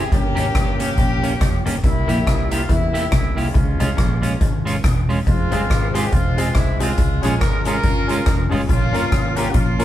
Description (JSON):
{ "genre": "ska", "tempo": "140 BPM", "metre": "4/4", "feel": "swing 59% on 8ths", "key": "unclear", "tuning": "A4 = 439 Hz", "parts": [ { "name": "warm horn section", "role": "melody", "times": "0.0-9.8 s", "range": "G3 to Bb4", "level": "-24 LUFS", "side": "left 1 dB", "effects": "none" }, { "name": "clean electric guitar", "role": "accompaniment", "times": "0.0-9.8 s", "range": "Ab3 to G4", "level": "-25 LUFS", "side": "right 2 dB", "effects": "none" }, { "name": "fingered electric bass", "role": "bass", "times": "0.0-9.8 s", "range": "E1 to E2", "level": "-22 LUFS", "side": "equal", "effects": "none" }, { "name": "semi-hollow electric guitar", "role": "riff", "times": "0.1-9.7 s", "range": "E2 to E3", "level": "-31 LUFS", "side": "left 6 dB", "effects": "none" }, { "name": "street-band drum kit", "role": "drums", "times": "0.1-9.8 s", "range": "hi-hat, kick drum, rim click", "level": "-20 LUFS", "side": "equal", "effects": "none" }, { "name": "bright upright piano", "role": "stabs", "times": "5.5-9.8 s", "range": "C4 to Bb4", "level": "-26 LUFS", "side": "left 2 dB", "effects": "none" } ], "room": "moderate studio reverb, RT60 0.5 s", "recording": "band playing live in one room", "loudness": "-16 LUFS", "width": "side -12 dB against mid", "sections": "0.0-9.8 A section", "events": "none", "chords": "0.1 Gdim; 1.8 C7; 3.6 Db; 5.3 Fm; 7.0 Db; 8.7 Bbm" }